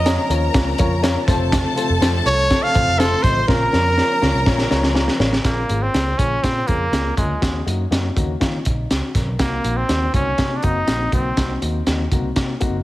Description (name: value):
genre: uptempo 1960s-style soul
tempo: 122 BPM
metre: 4/4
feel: straight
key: Bb harmonic minor, Bb minor from 5.4 s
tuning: A4 = 440 Hz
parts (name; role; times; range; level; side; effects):
- warm trumpet; melody; 0.0-11.6 s; Ab3 to F5; -21 LUFS; right 1 dB; slapback echo
- warm studio string section; second line; 0.0-5.4 s; A4 to C6; -25 LUFS; left 1 dB; none
- percussive tonewheel organ; sustained chords; 0.0-5.4 s; C3 to Db4; -30 LUFS; right 1 dB; none
- vintage muted picked electric bass; bass; 0.0-12.8 s; F1 to Eb3; -22 LUFS; equal; none
- dark upright piano; accompaniment; 0.1-12.8 s; Bb3 to Eb5; -26 LUFS; left 5 dB; none
- crunchy breakbeat drum kit; drums; 0.1-12.7 s; hi-hat, kick drum, snare drum; -20 LUFS; equal; none
room: light reverb, studio reverb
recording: heavily compressed radio sound, multiband compression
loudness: -16 LUFS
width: side -16 dB against mid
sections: 0.0-5.4 A section; 5.4-12.8 B section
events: drum fill 3.5-5.4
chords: 0.0 Bbm; 1.3 F; 3.5 Bbm; 5.4 Bbm7; 7.4 Ebm7; 9.4 Cm7b5